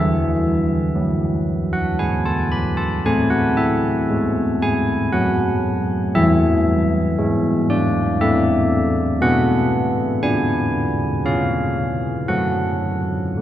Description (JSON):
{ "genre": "classical, tune for church bells", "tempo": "58 BPM", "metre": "3/4", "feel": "straight", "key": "unclear", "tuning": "A4 = 440 Hz", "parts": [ { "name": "carillon bells", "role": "solo", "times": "0.0-13.4 s", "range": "E3 to B5", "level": "-17 LUFS", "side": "equal", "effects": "none" } ], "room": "wet cathedral reverb, RT60 4.3 s", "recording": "heard from further back in the room", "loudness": "-17 LUFS", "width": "side -12 dB against mid", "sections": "0.0-13.4 A section", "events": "none", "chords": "0.0 E; 3.1 A5; 6.2 E; 9.2 G#m7b5/B; 11.3 C#; 12.3 F#m" }